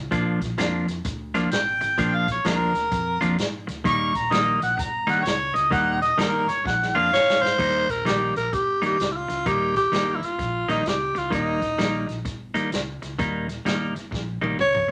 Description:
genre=electric blues shuffle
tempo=128 BPM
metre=4/4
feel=swing 64% on 8ths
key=Eb mixolydian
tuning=A4 = 439 Hz
part: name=fingered electric bass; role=bass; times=0.0-14.9 s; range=Eb1 to Ab2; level=-36 LUFS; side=equal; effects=none
part: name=clean electric guitar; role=riff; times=0.1-14.9 s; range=Eb3 to F4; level=-28 LUFS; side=equal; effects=none
part: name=vintage drum kit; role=drums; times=0.1-14.9 s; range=crash cymbal, hi-hat, kick drum, snare drum, toms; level=-33 LUFS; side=equal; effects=none
part: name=clear harmonica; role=second line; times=1.5-7.6 s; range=Bb4 to Db6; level=-25 LUFS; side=equal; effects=overdrive
part: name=growling tenor saxophone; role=melody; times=7.1-14.9 s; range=Eb4 to Db5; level=-25 LUFS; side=equal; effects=none
room=moderate studio reverb, RT60 0.7 s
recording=none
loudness=-23 LUFS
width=mono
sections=0.0-7.6 A section; 7.6-14.9 B section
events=harmonica solo 0.0-7.6; drum fill 6.7-7.6, 14.1-14.9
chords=0.1 Bb7; 3.9 Eb7; 6.7 Bb7; 7.6 Eb7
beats=| 0.12 0.58 1.05 1.52 | 1.99 2.45 2.92 3.39 | 3.85 4.32 4.79 5.25 | 5.72 6.19 6.66 7.12 | 7.59 8.05 8.52 8.99 | 9.46 9.92 10.39 10.86 | 11.32 11.79 12.26 12.72 | 13.19 13.65 14.12 14.59

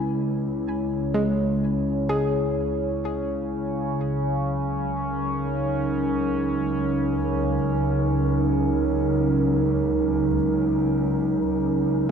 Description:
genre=ambient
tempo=free time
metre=none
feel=none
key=unclear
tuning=A4 = 441 Hz
part: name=warbly tape-like pad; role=sustained chords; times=0.0-12.1 s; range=F#3 to C#5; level=-25 LUFS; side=right 1 dB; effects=chorus, built-in reverb
part: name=soft round pluck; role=arpeggios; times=0.0-6.2 s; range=G#3 to G#5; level=-28 LUFS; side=left 2 dB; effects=chorus, ping-pong delay
part: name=clear chamber double bass section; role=bass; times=0.0-12.1 s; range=C#2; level=-30 LUFS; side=right 1 dB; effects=none
part: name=analog drone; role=drone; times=0.0-12.1 s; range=C#3 to C#4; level=-26 LUFS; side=equal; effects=chorus, phaser
room=wet concert hall reverb, RT60 2.5 s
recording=none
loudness=-21 LUFS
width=side -7 dB against mid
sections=0.0-12.1 A section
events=fade-in on double bass section 0.0-12.1; filter sweep on ambient pad 0.0-12.1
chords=0.0 C#m; 4.0 D#m7/C#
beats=free time

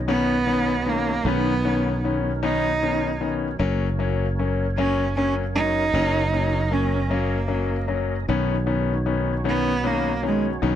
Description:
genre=six-eight pop ballad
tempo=51 BPM (dotted quarters)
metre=6/8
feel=straight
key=unclear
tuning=A4 = 440 Hz
part: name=percussive tonewheel organ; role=sustained chords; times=0.0-10.8 s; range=F#3 to D#5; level=-33 LUFS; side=right 5 dB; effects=overdrive, chorus vibrato, slow rotary speaker
part: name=sustaining fretless electric bass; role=bass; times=0.0-10.8 s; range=F#1 to B1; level=-26 LUFS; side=equal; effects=wide subtle chorus
part: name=warm cello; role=melody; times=0.1-10.8 s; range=F#3 to D#4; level=-24 LUFS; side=right 4 dB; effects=none
part: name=clear concert grand piano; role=accompaniment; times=0.1-10.8 s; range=D#3 to C#4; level=-25 LUFS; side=left 6 dB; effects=none
room=little or no reverb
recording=dry, close 1970s-style studio recording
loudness=-20 LUFS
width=side -10 dB against mid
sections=0.0-10.8 A section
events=none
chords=0.0 Badd9; 3.6 F#; 8.3 Badd9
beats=0.08 | 1.26 2.43 | 3.60 4.77 | 5.94 7.11 | 8.29 9.46 | 10.63

